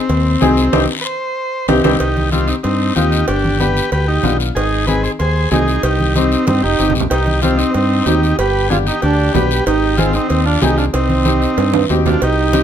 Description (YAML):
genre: latin, cumbia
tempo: 188 BPM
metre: 4/4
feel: straight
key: C harmonic minor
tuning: A4 = 439 Hz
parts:
  - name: combo organ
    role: melody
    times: 0.0-12.6 s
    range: C4 to C5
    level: -18 LUFS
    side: equal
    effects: none
  - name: modern bright fingered electric bass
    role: bass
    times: 0.1-12.6 s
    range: F1 to G2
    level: -17 LUFS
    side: equal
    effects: none
  - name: congas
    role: percussion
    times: 0.1-12.6 s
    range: none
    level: -21 LUFS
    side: right 2 dB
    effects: none
  - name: cowbell and timbales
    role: percussion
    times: 0.1-12.4 s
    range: none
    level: -21 LUFS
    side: right 7 dB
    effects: none
  - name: guiro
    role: percussion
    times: 0.1-12.6 s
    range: none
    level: -28 LUFS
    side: left 6 dB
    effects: none
  - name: bright upright piano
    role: accompaniment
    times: 0.4-12.6 s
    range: B3 to Ab4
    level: -19 LUFS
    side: left 5 dB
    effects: none
  - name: breathy flugelhorn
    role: second line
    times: 6.5-12.6 s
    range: C4 to G4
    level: -22 LUFS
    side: right 8 dB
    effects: none
room: moderate studio reverb, RT60 0.6 s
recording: close, detailed microphones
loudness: -13 LUFS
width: side -9 dB against mid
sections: 0.0-2.0 A section; 2.0-12.2 B section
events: transistor combo organ solo 0.0-2.0; band accent 0.7-2.0; drum fill 1.2-2.0, 6.5-7.1, 11.6-12.2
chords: 0.0 Ab; 0.7 Cm; 3.3 G7; 4.6 Ab; 5.8 Cm; 8.4 G; 9.7 Ab; 10.9 Cm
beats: 0.09 0.41 | 0.73 1.05 1.37 1.69 | 2.01 2.33 2.65 2.96 | 3.28 3.60 3.92 4.24 | 4.56 4.88 5.20 5.52 | 5.84 6.16 6.47 6.79 | 7.11 7.43 7.75 8.07 | 8.39 8.71 9.03 9.35 | 9.66 9.98 10.30 10.62 | 10.94 11.26 11.58 11.90 | 12.21 12.53